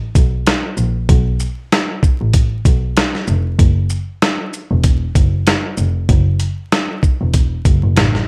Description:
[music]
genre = hip hop, boom-bap hip-hop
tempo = 96 BPM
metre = 4/4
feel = swing 58% on 16ths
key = unclear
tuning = A4 = 440 Hz
[part]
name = dark double bass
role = bass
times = 0.2-8.1 s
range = E1 to B1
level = -19 LUFS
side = equal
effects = none
[part]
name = dusty soul sampler-style drum kit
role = drums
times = 0.2-8.2 s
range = hi-hat, kick drum, rim click, shaker, snare drum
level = -16 LUFS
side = equal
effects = none
[sound]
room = light reverb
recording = vinyl crackle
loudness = -16 LUFS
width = mono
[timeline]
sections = 0.0-8.3 A section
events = none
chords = none

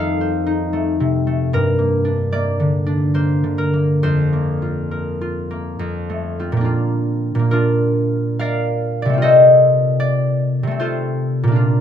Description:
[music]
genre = classical, solo harp piece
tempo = 66-78 BPM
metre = 3/4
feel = rubato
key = unclear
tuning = A4 = 438 Hz
[part]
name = concert harp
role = solo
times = 0.0-11.8 s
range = F2 to C6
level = -15 LUFS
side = equal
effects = none
[sound]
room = little or no reverb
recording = close, detailed microphones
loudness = -15 LUFS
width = side -9 dB against mid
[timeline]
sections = 0.0-6.7 A section; 6.7-11.8 B section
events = none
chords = 0.0 F7; 1.5 Gm; 4.0 Fsus4; 5.8 F; 6.7 Bb; 9.2 F7/C

